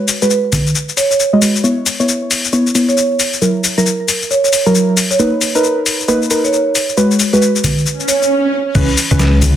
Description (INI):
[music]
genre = UK garage, two-step garage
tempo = 135 BPM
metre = 4/4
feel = swing 62% on 16ths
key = C# dorian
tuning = A4 = 440 Hz
[part]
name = deep mellow chord stab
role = stabs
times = 0.0-9.6 s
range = E3 to D#5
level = -14 LUFS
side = equal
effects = chorus, tape echo
[part]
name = boom bap sampler-style drum kit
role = drums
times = 0.1-9.5 s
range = congas, crash cymbal, hi-hat, rim click, shaker, snare drum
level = -16 LUFS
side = left 3 dB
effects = studio reverb
[part]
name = marimba with medium mallets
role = melody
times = 0.2-8.3 s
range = A#4 to C#5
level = -18 LUFS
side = right 4 dB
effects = tape echo
[part]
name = swell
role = sound effects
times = 8.0-8.8 s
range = none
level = -17 LUFS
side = right 3 dB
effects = none
[part]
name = dark detuned saw bass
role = bass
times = 8.8-9.6 s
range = C#2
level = -12 LUFS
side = left 1 dB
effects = tube saturation
[part]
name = electronic kick drum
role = drums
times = 8.8-9.2 s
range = none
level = -16 LUFS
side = equal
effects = studio reverb
[sound]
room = wet small room reverb, RT60 0.5 s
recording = dense, heavily limited modern master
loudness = -11 LUFS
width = side -10 dB against mid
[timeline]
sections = 0.0-8.8 A section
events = filter sweep on synth stab 0.0-8.8; swell 8.0-8.8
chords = 0.0 G#m7; 1.6 C#m7; 3.2 F#7; 5.0 Bmaj7; 6.8 G#m7; 8.8 C#m7